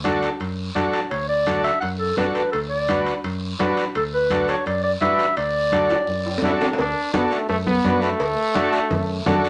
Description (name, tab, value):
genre	latin, cumbia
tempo	169 BPM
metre	4/4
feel	straight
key	D major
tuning	A4 = 440 Hz
part	combo organ	accompaniment	0.0-9.5 s	D4 to B4	-25 LUFS	equal	none
part	fingered electric bass	bass	0.0-9.5 s	A1 to F#2	-32 LUFS	equal	none
part	congas	percussion	0.0-9.4 s	none	-30 LUFS	equal	none
part	guiro	percussion	0.0-9.5 s	none	-38 LUFS	equal	none
part	timbales and cowbell	percussion	0.1-9.4 s	none	-32 LUFS	equal	none
part	warm clarinet	melody	1.1-6.6 s	A4 to F#5	-24 LUFS	equal	none
part	brilliant trombone	second line	6.4-9.4 s	A3 to E4	-25 LUFS	equal	none
room	wet studio reverb, RT60 0.6 s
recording	nothing above 10.3 kHz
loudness	-22 LUFS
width	mono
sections	0.0-6.8 A section; 6.8-9.5 B section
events	drum fill 5.9-6.8; trombone solo 6.8-9.5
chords	0.0 D